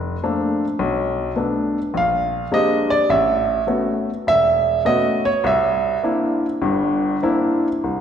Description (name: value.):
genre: solo jazz.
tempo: 103 BPM.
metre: 4/4.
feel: swing 68% on 8ths, rubato.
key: unclear.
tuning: A4 = 440 Hz.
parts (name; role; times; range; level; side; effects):
warm upright piano; solo; 0.0-8.0 s; E1 to F5; -17 LUFS; equal; none.
room: wet recital hall reverb, RT60 1.9 s.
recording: recorded in a church or concert hall.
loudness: -17 LUFS.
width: side -8 dB against mid.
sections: 0.0-7.8 A section.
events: upright piano solo 0.0-7.8.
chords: 0.0 Bbmaj9; 0.8 Bm7; 1.9 Bb13; 3.1 A69; 5.4 C9.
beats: 0.23 | 0.80 1.38 1.95 2.52 | 3.09 3.68 4.26 4.85 | 5.44 6.03 6.62 7.23 | 7.85.